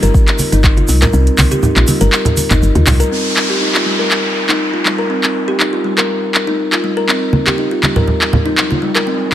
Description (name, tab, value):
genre	afro house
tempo	121 BPM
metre	4/4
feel	swing 53% on 16ths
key	C minor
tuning	A4 = 440 Hz
part	kalimba	arpeggios	0.0-9.1 s	G3 to Bb4	-16 LUFS	left 1 dB	sidechain pumping, low-pass filter, tape echo
part	woody FM bass	bass	0.0-3.0 s	G1 to Eb2	-12 LUFS	equal	tube saturation, sidechain pumping
part	afro-pop drum kit	drums	0.0-9.3 s	handclaps, hi-hat	-17 LUFS	equal	overdrive
part	tube shaker	percussion	0.0-3.1 s	none	-25 LUFS	right 3 dB	none
part	electronic kick drum	drums	0.1-0.7 s	none	-11 LUFS	equal	overdrive
part	congas	percussion	0.4-3.0, 7.3-8.8 s	none	-16 LUFS	right 1 dB	none
part	downlifter and riser	sound effects	3.1-9.3 s	none	-21 LUFS	equal	none
room	light reverb, small room ambience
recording	none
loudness	-11 LUFS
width	side -12 dB against mid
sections	0.0-3.1 A section; 3.1-9.3 B section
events	kick drops out 1.1-3.1; riser 8.3-9.3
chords	0.0 C7(no3); 3.1 Cm7 (rootless)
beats	0.14 0.64 | 1.14 1.63 2.13 2.62 | 3.12 3.62 4.11 4.61 | 5.10 5.60 6.09 6.59 | 7.09 7.58 8.08 8.57 | 9.07